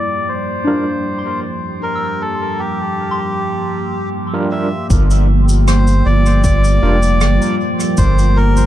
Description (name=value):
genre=ambient dub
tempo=78 BPM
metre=4/4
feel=straight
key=G dorian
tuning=A4 = 439 Hz
part: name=melodica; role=melody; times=0.0-8.7 s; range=G4 to E5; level=-21 LUFS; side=equal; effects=dub echo
part: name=deep dark ambient pad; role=sustained chords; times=0.0-8.7 s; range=F3 to A5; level=-20 LUFS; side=right 1 dB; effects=chorus, built-in reverb
part: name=soft synth bell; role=arpeggios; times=0.0-8.7 s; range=D4 to E6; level=-26 LUFS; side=left 2 dB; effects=chorus, dub echo
part: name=overdriven tine electric piano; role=stabs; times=0.7-7.0 s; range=G3 to Bb4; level=-24 LUFS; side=right 2 dB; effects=medium tremolo, dub echo
part: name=round analog bass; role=bass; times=4.9-8.7 s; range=F1 to G1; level=-12 LUFS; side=equal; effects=none
part: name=cabasa and rim click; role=drums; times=4.9-8.7 s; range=none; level=-26 LUFS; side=equal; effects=dub echo
part: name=electronic kick drum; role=drums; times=4.9-8.1 s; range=none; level=-16 LUFS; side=equal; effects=none
room=light reverb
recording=low-pass filter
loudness=-13 LUFS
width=side -12 dB against mid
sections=0.0-4.9 A section; 4.9-8.7 B section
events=filter sweep on synth bell 0.0-4.9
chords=0.0 Gm7